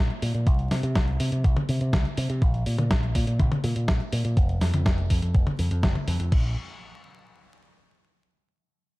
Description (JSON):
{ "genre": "italo disco", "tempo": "123 BPM", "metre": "4/4", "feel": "straight", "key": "unclear", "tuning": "A4 = 440 Hz", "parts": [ { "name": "picked electric bass with an envelope filter", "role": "bass", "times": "0.0-6.5 s", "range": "F1 to C3", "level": "-25 LUFS", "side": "equal", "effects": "tube saturation" }, { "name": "clean 12-bit digital drum machine", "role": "drums", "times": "0.1-6.4 s", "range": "crash cymbal, hi-hat, snare drum, toms", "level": "-30 LUFS", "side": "equal", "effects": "none" }, { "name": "electronic kick drum", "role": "drums", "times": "0.5-6.4 s", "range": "none", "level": "-22 LUFS", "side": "equal", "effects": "none" } ], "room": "little or no reverb", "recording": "dark, warm production, vinyl crackle", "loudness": "-22 LUFS", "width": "side -21 dB against mid", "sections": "0.0-6.3 A section; 6.3-8.3 B section", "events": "none", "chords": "none", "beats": "| 0.47 0.95 1.44 1.93 | 2.42 2.91 3.39 3.88 | 4.37 4.86 5.34 5.83 | 6.32" }